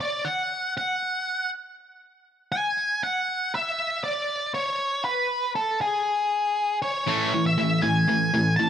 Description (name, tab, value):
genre	rock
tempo	119 BPM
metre	4/4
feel	straight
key	unclear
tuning	A4 = 440 Hz
part	octave-fuzz lead guitar	melody	0.0-8.7 s	G#4 to A5	-24 LUFS	equal	distortion, tape echo
part	sludgy distorted guitar	riff	7.1-8.7 s	A2 to A3	-22 LUFS	equal	overdrive
room	moderate large studio reverb, RT60 1.1 s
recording	none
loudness	-23 LUFS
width	side -9 dB against mid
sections	0.0-7.1 A section; 7.1-8.7 B section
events	none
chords	0.0 N.C.; 7.1 A5